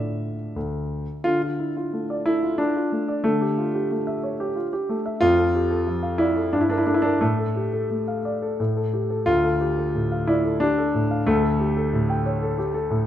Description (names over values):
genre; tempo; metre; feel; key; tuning
classical-period piano sonatina; 90 BPM; 3/4; uneven beats, rubato; D minor; A4 = 440 Hz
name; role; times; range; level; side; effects
warm concert grand piano; solo; 0.0-13.1 s; D2 to G5; -21 LUFS; equal; none
room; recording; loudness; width
moderate recital hall reverb, RT60 1.4 s; none; -21 LUFS; side -11 dB against mid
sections
0.0-1.3 A section; 1.3-13.1 B section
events
none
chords
0.0 Dm; 3.2 A7/D; 5.2 Dm/F; 6.5 Gm69; 7.2 Dm/A; 8.6 Gsus2/A; 9.3 Dm; 11.3 A7/D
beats
0.56 | 1.25 1.93 2.59 | 3.25 3.90 4.55 | 5.21 5.86 6.52 | 7.21 7.91 8.59 | 9.27 9.95 10.61 | 11.27 11.92 12.57